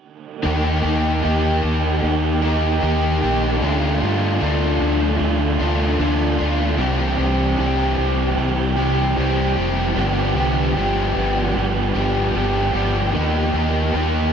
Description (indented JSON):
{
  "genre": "rock",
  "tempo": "76 BPM",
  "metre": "4/4",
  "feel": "straight",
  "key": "unclear",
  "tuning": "A4 = 443 Hz",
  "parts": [
    { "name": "overdriven electric guitar", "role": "riff", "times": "0.4-14.3 s", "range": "G2 to G4", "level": "-22 LUFS", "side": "left 6 dB", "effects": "analog chorus" },
    { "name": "overdriven electric guitar", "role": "riff", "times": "0.4-14.3 s", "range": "G2 to G4", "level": "-22 LUFS", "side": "right 6 dB", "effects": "reverse reverb" },
    { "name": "overdriven fingered electric bass", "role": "bass", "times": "0.5-14.3 s", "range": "F1 to G2", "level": "-22 LUFS", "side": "equal", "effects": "none" }
  ],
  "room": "wet huge ambient reverb, RT60 7.7 s",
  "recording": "dreamy mix soaked in reverb",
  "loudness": "-17 LUFS",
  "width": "side -7 dB against mid",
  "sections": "0.4-14.3 A section",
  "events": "none",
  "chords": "0.4 Eb; 3.6 Dm; 6.8 C; 10.0 G7; 13.1 Eb"
}